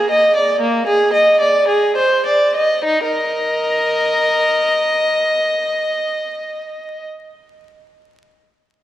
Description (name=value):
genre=classical, baroque-style suite movement for unaccompanied violin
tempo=50-60 BPM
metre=3/4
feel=rubato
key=unclear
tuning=A4 = 440 Hz
part: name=rich violin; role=solo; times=0.0-7.1 s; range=Bb3 to Eb5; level=-14 LUFS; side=equal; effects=none
room=wet concert hall reverb, RT60 2.5 s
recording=vinyl crackle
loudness=-14 LUFS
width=side -13 dB against mid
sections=0.0-2.8 A section; 2.8-6.3 B section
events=slowing down 0.0-2.8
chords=0.0 Bb7; 2.8 Eb5